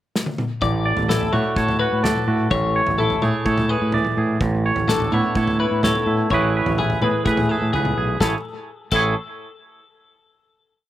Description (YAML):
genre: math rock and midwest emo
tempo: 127 BPM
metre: 4/4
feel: straight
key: A major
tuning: A4 = 440 Hz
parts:
  - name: loose indie drum kit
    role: drums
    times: 0.2-9.0 s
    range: crash cymbal, kick drum, snare drum, toms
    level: -25 LUFS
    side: left 1 dB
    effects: none
  - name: twangy electric guitar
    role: accompaniment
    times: 0.6-9.2 s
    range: A2 to D5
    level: -22 LUFS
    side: right 4 dB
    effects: slapback echo
  - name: twelve-string electric guitar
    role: arpeggios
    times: 0.6-9.1 s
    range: G#4 to D5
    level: -24 LUFS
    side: left 6 dB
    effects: spring reverb, slapback echo
  - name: growling fingered electric bass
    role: bass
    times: 0.6-9.1 s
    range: A1 to A2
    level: -22 LUFS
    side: equal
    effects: overdrive
room: little or no reverb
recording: none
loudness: -18 LUFS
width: side -13 dB against mid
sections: 0.0-0.6 pickup bar; 0.6-8.2 A section; 8.2-10.1 final chord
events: drum fill 0.1-0.6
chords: 0.0 N.C.; 0.6 Dmaj9/A; 2.5 Amaj7; 4.4 Bm11/A; 6.3 C#m7/A; 8.2 Amaj7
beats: 0.15 | 0.62 1.09 1.57 2.04 | 2.51 2.99 3.46 3.93 | 4.41 4.88 5.36 5.83 | 6.31 6.78 7.25 7.73 | 8.20 8.68